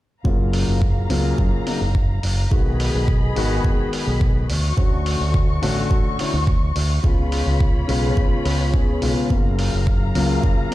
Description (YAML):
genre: nu-disco, nu disco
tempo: 106 BPM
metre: 4/4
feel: straight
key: F# major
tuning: A4 = 440 Hz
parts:
  - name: dark concert grand piano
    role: accompaniment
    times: 0.2-10.7 s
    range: C#3 to G#4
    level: -24 LUFS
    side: left 2 dB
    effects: low-pass filter, slapback echo
  - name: muted symphonic string section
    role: sustained chords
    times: 0.2-10.7 s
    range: F#3 to C#6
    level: -29 LUFS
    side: left 2 dB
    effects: sidechain pumping
  - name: fingered electric bass with an envelope filter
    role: bass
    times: 0.2-10.5 s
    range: F#1 to F#2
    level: -21 LUFS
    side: equal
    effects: none
  - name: electronic kick drum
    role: drums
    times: 0.2-10.6 s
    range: none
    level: -19 LUFS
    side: equal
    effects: none
  - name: electronic hi-hat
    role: drums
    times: 0.5-10.7 s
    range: none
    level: -31 LUFS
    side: right 1 dB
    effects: none
room: studio ambience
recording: played on a big sound system in a bare room, stone room reverb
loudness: -17 LUFS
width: side -16 dB against mid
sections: 0.2-10.7 A section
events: none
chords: 0.2 F#maj7; 2.5 B6; 4.5 Dmaj7; 7.0 C#7; 9.3 F#maj7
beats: | 0.25 0.81 1.38 1.95 | 2.51 3.08 3.65 4.21 | 4.78 5.34 5.91 6.47 | 7.04 7.61 8.17 8.74 | 9.30 9.87 10.44